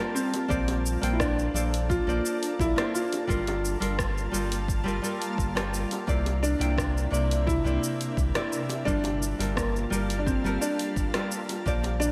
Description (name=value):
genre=sunset chillout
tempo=86 BPM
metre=4/4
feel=straight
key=G dorian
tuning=A4 = 441 Hz
part: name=warm grand piano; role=melody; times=0.0-12.1 s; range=Bb3 to F4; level=-33 LUFS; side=equal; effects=digital delay
part: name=nylon-string guitar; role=accompaniment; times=0.0-12.1 s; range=C3 to G5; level=-34 LUFS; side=equal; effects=digital delay
part: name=shimmering ambient pad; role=sustained chords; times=0.0-12.1 s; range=C3 to A5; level=-38 LUFS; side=equal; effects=chorus, built-in reverb
part: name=smooth R&B drum kit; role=drums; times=0.2-12.1 s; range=hi-hat, rim click, shaker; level=-37 LUFS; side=equal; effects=studio reverb, gated reverb
part: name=bongos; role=percussion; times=0.3-12.0 s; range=none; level=-43 LUFS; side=equal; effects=none
part: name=warm sub bass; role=bass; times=0.5-12.1 s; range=G1 to C2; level=-32 LUFS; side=equal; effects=none
part: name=electronic kick drum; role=drums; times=0.5-11.8 s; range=none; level=-34 LUFS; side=equal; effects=overdrive, studio reverb
room=moderate lush hall reverb, RT60 2.8 s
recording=bright 1980s-style digital production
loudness=-27 LUFS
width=mono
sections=0.0-12.1 A section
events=none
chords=0.0 Gm9; 0.5 Bbmaj9; 3.3 Gm9; 6.1 C9; 8.9 Gm9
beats=| 0.50 1.20 1.90 2.59 | 3.29 3.99 4.69 5.38 | 6.08 6.78 7.48 8.18 | 8.87 9.57 10.27 10.97 | 11.66